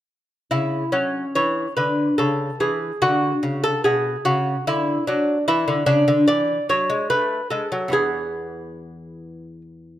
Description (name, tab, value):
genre	classical, baroque-style dance for lute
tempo	73 BPM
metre	3/4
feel	uneven beats, rubato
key	unclear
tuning	A4 = 440 Hz
part	lute	solo	0.5-10.0 s	E2 to D5	-19 LUFS	equal	none
room	light reverb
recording	close, detailed microphones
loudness	-18 LUFS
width	side -12 dB against mid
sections	0.5-10.0 A section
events	none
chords	0.5 C#madd11; 2.2 A/C#; 3.0 Bm; 5.5 E7; 7.1 F#madd11; 7.9 E